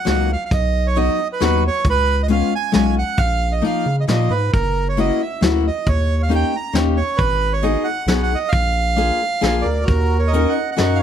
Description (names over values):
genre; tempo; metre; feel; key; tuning
musette waltz; 134 BPM; 3/4; straight; Eb minor; A4 = 440 Hz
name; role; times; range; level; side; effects
bandoneon; melody; 0.0-11.0 s; Bb4 to Bb5; -21 LUFS; right 6 dB; none
fingerpicked steel-string acoustic guitar; accompaniment; 0.0-11.0 s; F3 to Bb4; -20 LUFS; left 6 dB; none
saturated sub bass; bass; 0.1-11.0 s; Gb1 to Db3; -19 LUFS; equal; none
soft brush drum kit; drums; 0.1-10.9 s; hi-hat, kick drum, snare drum; -21 LUFS; equal; none
mellow accordion; second line; 9.6-11.0 s; Gb4 to Eb5; -24 LUFS; right 7 dB; none
room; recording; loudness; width
little or no reverb; close, detailed microphones; -16 LUFS; side -9 dB against mid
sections
0.0-11.0 A section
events
none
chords
0.0 Ebm; 0.5 B; 1.9 Db7; 3.2 Bbsus4; 4.5 Gb7; 5.9 Eb7; 7.2 Abm7; 8.5 Bb7; 9.9 Ebm7